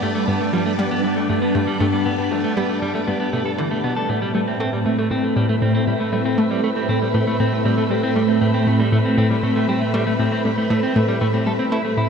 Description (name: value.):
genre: ambient, sequencer-driven space music.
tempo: 118 BPM.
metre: 4/4.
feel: straight.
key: A minor.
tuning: A4 = 440 Hz.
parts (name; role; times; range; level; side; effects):
phased string machine; sustained chords; 0.0-12.1 s; G2 to E5; -20 LUFS; equal; ensemble chorus, phaser, shimmer reverb.
clean electric guitar; arpeggios; 0.0-12.1 s; E3 to A4; -24 LUFS; right 1 dB; auto-pan, low-pass filter, tape echo, shimmer reverb.
analog pluck; riff; 0.0-12.1 s; G2 to A3; -23 LUFS; equal; chorus, tape echo.
wind-like tuned noise texture; texture; 0.0-12.1 s; A5 to B5; -32 LUFS; equal; built-in reverb, shimmer reverb.
room: wet cathedral reverb, RT60 5.4 s.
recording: in a vast, echoing space.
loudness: -17 LUFS.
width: side -6 dB against mid.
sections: 0.0-12.1 A section.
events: none.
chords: 0.0 G; 4.1 Amadd9.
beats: | 0.03 0.53 1.04 1.55 | 2.06 2.57 3.08 3.58 | 4.09 4.60 5.11 5.62 | 6.13 6.63 7.14 7.65 | 8.16 8.67 9.18 9.69 | 10.19 10.70 11.21 11.72.